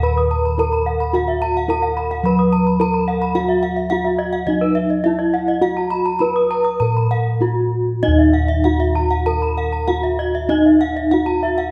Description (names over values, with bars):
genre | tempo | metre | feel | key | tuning
Balinese gamelan | 97-109 BPM | 4/4 | straight | Eb pelog | A4 = 439 Hz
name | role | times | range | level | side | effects
gamelan-type bronze metallophone | melody | 0.0-11.7 s | Eb4 to Cb5-20c | -22 LUFS | equal | none
gamelan-type bronze metallophone | arpeggios | 0.0-11.7 s | Eb5 to Eb6 | -26 LUFS | equal | none
gamelan-type bossed gongs | bass | 0.0-11.7 s | Eb2 to Bb4-30c | -22 LUFS | equal | none
gamelan-type bronze metallophone | arpeggios | 0.2-11.6 s | Cb5-20c to Eb6 | -28 LUFS | equal | none
room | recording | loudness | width
wet large studio reverb, RT60 1.4 s | band playing live in one room | -18 LUFS | mono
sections
0.0-8.0 A section; 8.0-11.7 B section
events
none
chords
none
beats
0.04 0.59 | 1.14 1.69 2.24 2.80 | 3.35 3.90 4.47 5.04 | 5.62 6.21 6.80 7.41 | 8.02 8.64 9.26 9.88 | 10.50 11.12